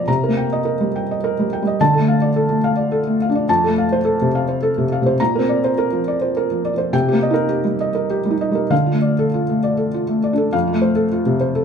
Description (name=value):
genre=neoclassical minimalist piano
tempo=97-107 BPM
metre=3/4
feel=rubato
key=C dorian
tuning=A4 = 440 Hz
part: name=felt-muted upright piano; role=solo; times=0.0-11.6 s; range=F2 to Bb5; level=-16 LUFS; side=equal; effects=none
room=moderate studio reverb, RT60 0.8 s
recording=band playing live in one room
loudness=-16 LUFS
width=side -7 dB against mid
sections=0.0-10.5 A section; 10.5-11.6 A section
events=none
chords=0.1 Cm7; 1.8 Dm; 3.5 F; 5.2 Bbadd9; 6.9 Cm7; 8.7 Dm; 10.5 F